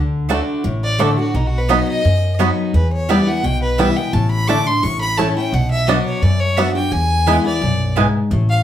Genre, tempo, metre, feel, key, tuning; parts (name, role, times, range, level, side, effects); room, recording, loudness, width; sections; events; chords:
bluegrass; 172 BPM; 4/4; straight; A4 = 439 Hz
picked steel-string acoustic guitar; accompaniment; 0.0-8.6 s; E2 to F#4; -19 LUFS; left 2 dB
upright bass; bass; 0.0-8.6 s; A1 to F#2; -19 LUFS; equal
bluegrass banjo; arpeggios; 0.3-8.1 s; G3 to E4; -21 LUFS; right 6 dB
mandolin; stabs; 0.3-8.1 s; A3 to B5; -22 LUFS; right 5 dB
clear fiddle; melody; 0.8-8.6 s; D#4 to D6; -21 LUFS; left 1 dB
wet studio reverb, RT60 0.5 s; heard from further back in the room; -14 LUFS; side -10 dB against mid
0.0-8.6 A section
fiddle solo 0.0-8.6
0.0 D; 1.3 B; 2.7 Em; 4.1 Asus4; 4.8 A; 5.5 Bm; 6.9 E